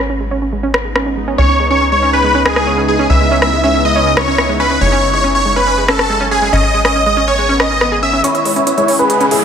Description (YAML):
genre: uplifting trance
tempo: 140 BPM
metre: 4/4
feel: straight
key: C# minor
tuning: A4 = 440 Hz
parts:
  - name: shimmering ambient pad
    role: sustained chords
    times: 0.0-9.4 s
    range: C#3 to D#5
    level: -21 LUFS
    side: left 1 dB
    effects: chorus, built-in reverb
  - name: analog pluck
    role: arpeggios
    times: 0.0-9.4 s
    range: G#3 to G#4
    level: -19 LUFS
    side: right 2 dB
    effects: chorus, cassette tape, digital delay
  - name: tight sequencer bass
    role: bass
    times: 0.0-8.2 s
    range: F#1 to C#2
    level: -19 LUFS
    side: equal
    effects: none
  - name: big-room dance drum kit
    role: drums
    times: 0.7-9.4 s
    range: hi-hat, rim click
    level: -18 LUFS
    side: left 1 dB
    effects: overdrive
  - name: big supersaw lead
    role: melody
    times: 1.4-9.4 s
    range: E4 to E5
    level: -13 LUFS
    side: equal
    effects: phaser, low-pass filter, digital delay
  - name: bright concert grand piano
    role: second line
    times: 8.2-9.4 s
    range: G#4 to C#5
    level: -18 LUFS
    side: equal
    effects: low-pass filter
  - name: riser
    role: sound effects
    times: 8.8-9.4 s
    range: none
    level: -26 LUFS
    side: left 1 dB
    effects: none
room: light reverb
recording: none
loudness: -11 LUFS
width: side -7 dB against mid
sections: 0.0-8.2 A section; 8.2-9.4 B section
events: filter sweep on synth pluck 0.0-8.2; filter sweep on ambient pad 0.0-8.2; build-up 8.2-9.4; filter sweep on supersaw synth 8.2-9.4; filter sweep on grand piano 8.2-9.4; riser 8.8-9.4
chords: 0.0 G#m; 1.4 C#m7; 4.8 F#m; 6.5 G#m; 8.2 C#m7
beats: 0.10 0.53 0.96 | 1.38 1.81 2.24 2.67 | 3.10 3.53 3.96 4.38 | 4.81 5.24 5.67 6.10 | 6.53 6.96 7.38 7.81 | 8.24 8.67 9.10